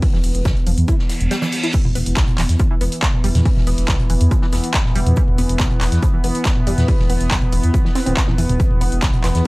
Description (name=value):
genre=driving peak-time techno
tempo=140 BPM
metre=4/4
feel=straight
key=unclear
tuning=A4 = 441 Hz
part: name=tight sequenced synth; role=riff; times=0.0-9.3 s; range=E3 to E4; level=-26 LUFS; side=equal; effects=chorus, overdrive, sidechain pumping, analog delay
part: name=analog drone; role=drone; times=0.0-9.5 s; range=E3 to B3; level=-25 LUFS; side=equal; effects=chorus, sidechain pumping
part: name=electronic kick drum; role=drums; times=0.0-9.1 s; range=none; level=-18 LUFS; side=equal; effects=overdrive, studio reverb
part: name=natural country drum kit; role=drums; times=0.0-9.4 s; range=hi-hat, shaker, snare drum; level=-34 LUFS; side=left 1 dB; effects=high-pass filter on hats, studio reverb, high-pass filter on snare, high-pass filter on perc, high-pass filter on room
part: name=techno drum kit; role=drums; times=0.0-9.4 s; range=crash cymbal, handclaps, hi-hat, toms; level=-23 LUFS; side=equal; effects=overdrive, sidechain pumping on hats, studio reverb, sidechain pumping on cymbals, sidechain pumping on toms
part: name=dark detuned saw bass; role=bass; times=0.1-9.4 s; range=D1 to E2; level=-18 LUFS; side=equal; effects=sidechain pumping
part: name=reverse cymbal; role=sound effects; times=1.1-1.7 s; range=none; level=-25 LUFS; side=right 1 dB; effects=none
room=small room ambience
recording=dry, gritty hardware recording, cassette tape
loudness=-15 LUFS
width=side -22 dB against mid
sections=0.0-1.7 A section; 1.7-9.5 B section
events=reverse cymbal 1.1-1.7; kick drops out 1.3-1.7; drop 1.7-9.5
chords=0.0 E5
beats=| 0.03 0.45 0.88 1.31 | 1.74 2.17 2.60 3.03 | 3.45 3.88 4.31 4.74 | 5.17 5.60 6.03 6.45 | 6.88 7.31 7.74 8.17 | 8.60 9.03 9.45